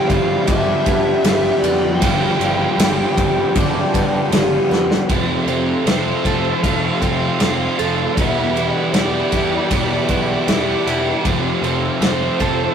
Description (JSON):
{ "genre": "rock, shoegaze and dream pop", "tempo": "78 BPM", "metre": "4/4", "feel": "straight", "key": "unclear", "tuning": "A4 = 438 Hz", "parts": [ { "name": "fuzz lead guitar", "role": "melody", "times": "0.0-12.7 s", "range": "C5 to G5", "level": "-24 LUFS", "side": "equal", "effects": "distortion" }, { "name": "sweeping resonant pad", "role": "sustained chords", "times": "0.0-12.7 s", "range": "F4 to E6", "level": "-28 LUFS", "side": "equal", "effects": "chorus" }, { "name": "picked twelve-string acoustic guitar", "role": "arpeggios", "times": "0.0-12.7 s", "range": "F3 to A4", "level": "-26 LUFS", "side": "right 3 dB", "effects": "none" }, { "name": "crunchy overdriven guitar", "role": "riff", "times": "0.0-12.7 s", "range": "E2 to G4", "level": "-22 LUFS", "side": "right 4 dB", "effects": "none" }, { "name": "overdriven semi-hollow guitar", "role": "riff", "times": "0.0-12.7 s", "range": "E2 to G4", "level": "-21 LUFS", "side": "left 2 dB", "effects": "none" }, { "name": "fuzz picked electric bass", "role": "bass", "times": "0.1-12.7 s", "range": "E1 to G2", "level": "-25 LUFS", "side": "left 1 dB", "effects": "overdrive" }, { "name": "loose indie drum kit", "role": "drums", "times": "0.1-12.6 s", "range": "kick drum, ride cymbal, snare drum", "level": "-21 LUFS", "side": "equal", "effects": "none" } ], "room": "wet studio reverb, RT60 0.6 s", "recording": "rough rehearsal-room recording, warm saturation", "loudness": "-15 LUFS", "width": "side -7 dB against mid", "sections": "0.0-5.1 A section; 5.1-12.7 B section", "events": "drum fill 4.7-5.1", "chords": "0.0 G7; 5.1 F; 8.2 Em7; 11.2 Fmaj7" }